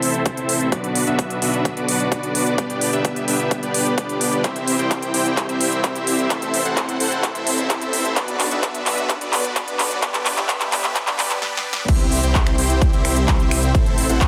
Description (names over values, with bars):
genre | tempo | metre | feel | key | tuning
EDM, festival progressive house | 129 BPM | 4/4 | straight | unclear | A4 = 440 Hz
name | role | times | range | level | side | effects
dense compressed supersaw | riff | 0.0-14.3 s | B3 to G5 | -24 LUFS | equal | sidechain pumping, low-pass filter, delay
detuned saw bass | bass | 0.0-14.3 s | G1 to C2 | -29 LUFS | equal | chorus, sidechain pumping, high-pass filter
big-room dance drum kit | drums | 0.0-14.3 s | crash cymbal, finger snaps, handclaps, hi-hat, snare drum | -25 LUFS | equal | overdrive
electronic kick drum | drums | 0.3-14.3 s | none | -22 LUFS | equal | overdrive, high-pass filter on kick
room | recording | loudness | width
moderate lush hall reverb, RT60 1.6 s | dense, heavily limited modern master, high-pass filter | -20 LUFS | mono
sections
0.0-11.9 A section; 11.9-14.3 B section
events
build-up 0.0-11.9; filter sweep on supersaw synth 0.0-11.9; drum fill 4.4-11.4, 11.4-11.9; drop 11.9-14.3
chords
0.0 Am; 0.7 Bm; 2.6 G; 4.4 C; 6.3 Am; 8.2 Bm; 10.0 G; 11.9 C; 13.7 Am